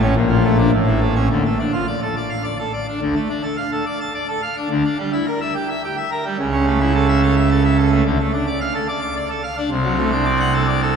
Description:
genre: classical, organ toccata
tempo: 107 BPM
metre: 3/4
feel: straight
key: D minor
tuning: A4 = 439 Hz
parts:
  - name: pipe organ, full organ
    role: solo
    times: 0.0-11.0 s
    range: A1 to D6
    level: -16 LUFS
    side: right 1 dB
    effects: none
room: wet cathedral reverb, RT60 5.5 s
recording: minimal, uncompressed stereo recording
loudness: -16 LUFS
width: side -6 dB against mid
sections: 0.0-3.0 A section; 3.0-11.0 B section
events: none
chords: 0.2 Bbmaj7; 0.7 A; 1.3 Dm; 4.7 Em7b5/D; 6.4 A/C#; 8.1 Dm; 9.7 D7/C

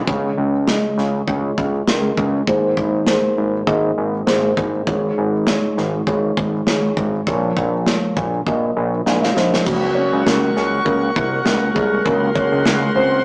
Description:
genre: piano-driven pop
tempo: 100 BPM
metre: 4/4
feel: swing 56% on 16ths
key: Db major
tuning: A4 = 445 Hz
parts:
  - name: felt-muted upright piano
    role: accompaniment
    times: 0.0-13.2 s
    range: Ab2 to Ab5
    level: -19 LUFS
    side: equal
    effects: none
  - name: fat analog bass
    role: bass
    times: 0.0-13.2 s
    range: Ab1 to Db2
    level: -21 LUFS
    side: equal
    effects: none
  - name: modern studio drum kit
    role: drums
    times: 0.1-12.8 s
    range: crash cymbal, kick drum, snare drum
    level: -21 LUFS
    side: equal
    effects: none
  - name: warm chamber string section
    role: sustained chords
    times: 9.7-13.2 s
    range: Bb4 to Db6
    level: -22 LUFS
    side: equal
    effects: none
room: moderate studio reverb, RT60 0.6 s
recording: rough rehearsal-room recording, tube saturation, small speaker sound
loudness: -15 LUFS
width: side -35 dB against mid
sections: 0.0-9.7 A section; 9.7-13.2 B section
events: drum fill 9.1-9.7; felt piano solo 9.7-13.2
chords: 0.1 Db; 2.5 Abadd9; 4.9 Db/Ab; 7.3 Bbm; 9.7 Gb

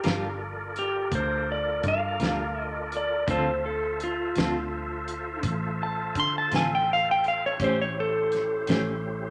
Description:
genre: slow blues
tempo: 56 BPM (dotted quarters)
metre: 12/8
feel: straight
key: D minor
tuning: A4 = 440 Hz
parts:
  - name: clean lap steel guitar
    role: melody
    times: 0.0-9.3 s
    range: F4 to C6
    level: -29 LUFS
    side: equal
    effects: none
  - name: clean electric guitar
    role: accompaniment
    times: 0.0-8.9 s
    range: D3 to B#4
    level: -34 LUFS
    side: equal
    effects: tremolo
  - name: tonewheel organ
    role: sustained chords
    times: 0.0-9.3 s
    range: C#4 to E5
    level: -36 LUFS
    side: equal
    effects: chorus vibrato, fast rotary speaker
  - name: vintage muted fingered electric bass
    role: bass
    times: 0.0-9.3 s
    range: G1 to D3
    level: -37 LUFS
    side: equal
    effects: none
  - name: warm soul drum kit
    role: drums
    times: 0.0-8.9 s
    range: hi-hat, kick drum, snare drum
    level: -32 LUFS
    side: equal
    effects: none
room: moderate large studio reverb, RT60 1.3 s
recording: none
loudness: -27 LUFS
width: mono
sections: 0.0-9.3 A section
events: electric slide guitar solo 0.0-9.3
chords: 0.0 Gm7; 3.3 Dm7; 7.6 A7#9

